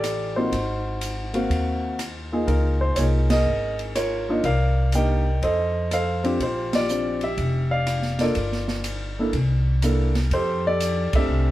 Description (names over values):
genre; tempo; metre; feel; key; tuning
jazz piano trio; 122 BPM; 4/4; swing 67% on 8ths; F major; A4 = 439 Hz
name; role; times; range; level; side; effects
warm grand piano; melody; 0.0-11.5 s; A3 to G5; -24 LUFS; equal; plate reverb
upright bass; bass; 0.0-11.5 s; F1 to Gb2; -24 LUFS; equal; none
open jazz drum kit; drums; 0.0-11.2 s; hi-hat, kick drum, ride cymbal, rim click, snare drum; -30 LUFS; right 1 dB; none
room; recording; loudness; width
moderate studio reverb, RT60 0.7 s; none; -20 LUFS; side -15 dB against mid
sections
0.0-11.5 A section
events
band accent 3.2, 6.6, 11.1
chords
0.0 F69; 0.5 Ab13; 2.5 Db69; 4.4 Cm9; 5.4 F7; 6.4 Bb6; 8.4 Gm7; 9.3 C13; 10.3 F69